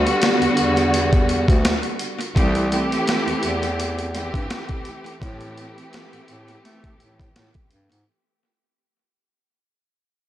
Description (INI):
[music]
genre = hip hop, boom-bap hip-hop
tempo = 84 BPM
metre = 4/4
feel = swing 54% on 16ths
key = A dorian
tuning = A4 = 440 Hz
[part]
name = warm studio string section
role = accompaniment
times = 0.0-7.9 s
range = D3 to G4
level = -22 LUFS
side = equal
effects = high-pass filter, low-pass filter, tape echo
[part]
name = clear bass clarinet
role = bass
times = 0.0-8.0 s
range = C2 to A3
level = -24 LUFS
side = equal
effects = none
[part]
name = boom bap sampler-style drum kit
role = drums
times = 0.1-8.1 s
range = hi-hat, kick drum, snare drum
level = -22 LUFS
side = equal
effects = tape echo
[sound]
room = little or no reverb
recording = echo-heavy mix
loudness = -18 LUFS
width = side -13 dB against mid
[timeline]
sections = 0.0-8.1 A section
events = fade-out 0.0-8.1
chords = 0.0 Gmaj7; 2.4 C6; 5.2 Am7